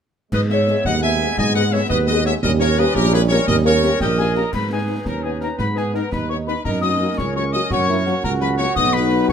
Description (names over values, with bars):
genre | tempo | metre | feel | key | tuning
military-style march for wind band | 114 BPM (dotted quarters) | 6/8 | straight | G# minor | A4 = 440 Hz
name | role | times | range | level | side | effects
bright trumpet section | melody | 0.3-9.3 s | G4 to G#5 | -24 LUFS | left 2 dB | none
warm woodwind section | second line | 0.3-9.3 s | C#4 to E5 | -25 LUFS | equal | none
dark trombone section | sustained chords | 0.3-4.3 s | G3 to C#4 | -26 LUFS | left 1 dB | none
dark tuba | bass | 0.3-9.3 s | A#1 to G#2 | -20 LUFS | right 3 dB | none
concert snare drum, clash cymbals and concert bass drum | drums | 0.3-9.3 s | none | -28 LUFS | left 1 dB | none
dark French horn section | accompaniment | 0.5-9.3 s | F#3 to G#4 | -25 LUFS | left 4 dB | none
bright piccolo | second line | 4.0-9.3 s | G5 to D#6 | -25 LUFS | left 5 dB | none
clear euphonium | second line | 5.1-9.3 s | B3 to G#4 | -27 LUFS | right 5 dB | none
room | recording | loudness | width
moderate large studio reverb, RT60 1.1 s | close, detailed microphones | -16 LUFS | side -8 dB against mid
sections
0.3-4.5 A section; 4.5-9.3 B section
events
none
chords
0.3 G#m; 2.4 D#7; 4.5 G#m; 6.6 F#; 8.8 B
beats
| 0.33 0.85 | 1.38 1.90 | 2.43 2.96 | 3.48 4.01 | 4.54 5.06 | 5.59 6.12 | 6.65 7.17 | 7.70 8.23 | 8.76 9.29